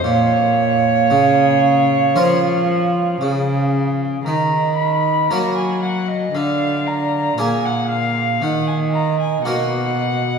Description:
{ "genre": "classical, baroque-style sonata movement with continuo", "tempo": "58 BPM", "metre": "4/4", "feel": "straight", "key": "Bb minor, Eb minor from 4.3 s", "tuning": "A4 = 438 Hz", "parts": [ { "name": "dark violin", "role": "melody", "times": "0.0-10.4 s", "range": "Db5 to Cb6", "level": "-21 LUFS", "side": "left 3 dB", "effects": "none" }, { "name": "mellow hollow baroque flute", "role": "second line", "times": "0.0-10.4 s", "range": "Db5 to F5", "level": "-20 LUFS", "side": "right 8 dB", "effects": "none" }, { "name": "harpsichord", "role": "accompaniment", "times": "0.0-10.4 s", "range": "Bb2 to Bb4", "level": "-24 LUFS", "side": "equal", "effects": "none" }, { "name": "rich cello", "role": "bass", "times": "0.0-10.4 s", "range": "Bb2 to Gb3", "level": "-20 LUFS", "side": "equal", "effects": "none" } ], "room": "wet church reverb, RT60 3.0 s", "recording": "recorded in a church or concert hall", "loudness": "-15 LUFS", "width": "side -6 dB against mid", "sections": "0.0-4.3 A section; 4.3-10.4 A section", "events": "none", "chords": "0.0 Bbm; 4.3 Ebm; 6.3 Bb7/D; 8.4 Ebm" }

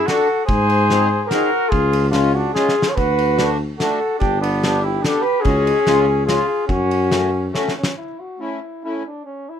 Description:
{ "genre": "alpine folk, alpine dance band", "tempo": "145 BPM", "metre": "3/4", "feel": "straight", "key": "F# minor", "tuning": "A4 = 440 Hz", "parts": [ { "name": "mellow flugelhorn", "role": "melody", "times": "0.0-9.6 s", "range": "C#4 to C#5", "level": "-20 LUFS", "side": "left 2 dB", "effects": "none" }, { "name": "warm trumpet", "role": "second line", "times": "0.0-7.5 s", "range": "B3 to A4", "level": "-23 LUFS", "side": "right 3 dB", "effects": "none" }, { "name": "dark tuba", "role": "bass", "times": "0.0-7.5 s", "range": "G1 to G#2", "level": "-20 LUFS", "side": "equal", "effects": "none" }, { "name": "accordion", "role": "accompaniment", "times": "0.1-9.0 s", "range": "G#3 to A4", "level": "-23 LUFS", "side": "left 2 dB", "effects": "light tremolo tuning" }, { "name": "loose indie drum kit", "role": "drums", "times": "0.1-7.9 s", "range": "kick drum, ride cymbal, snare drum", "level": "-25 LUFS", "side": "equal", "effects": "none" } ], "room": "light reverb", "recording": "minimal, uncompressed stereo recording", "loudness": "-15 LUFS", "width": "side -8 dB against mid", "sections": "0.0-8.0 A section; 8.0-9.6 B section", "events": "drum fill 2.6-3.0, 7.5-8.0", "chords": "0.5 G#7; 1.7 C#; 3.0 D; 4.2 G; 5.5 C#sus4; 5.9 C#; 6.7 F#m; 8.0 A" }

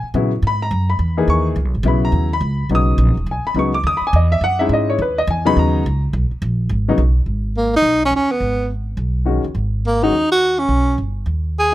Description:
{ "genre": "modal jazz", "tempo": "210 BPM", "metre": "4/4", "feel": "swing 62% on 8ths", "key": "G# minor from 7.3 s", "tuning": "A4 = 440 Hz", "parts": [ { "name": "warm baby grand piano", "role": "accompaniment", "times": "0.0-7.0, 9.3-11.7 s", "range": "C#3 to D#6", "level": "-18 LUFS", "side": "left 2 dB", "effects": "none" }, { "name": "upright bass", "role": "bass", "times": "0.0-11.7 s", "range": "D#1 to A#2", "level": "-18 LUFS", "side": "right 1 dB", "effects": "none" }, { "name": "breathy tenor saxophone", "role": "melody", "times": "7.6-11.7 s", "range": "A#3 to G#4", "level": "-15 LUFS", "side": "right 1 dB", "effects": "none" } ], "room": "little or no reverb", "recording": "close, detailed microphones", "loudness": "-15 LUFS", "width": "side -15 dB against mid", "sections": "0.0-7.3 A section; 7.3-11.7 B section", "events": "none", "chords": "0.0 C#m9; 2.7 G#madd9; 7.3 G#m" }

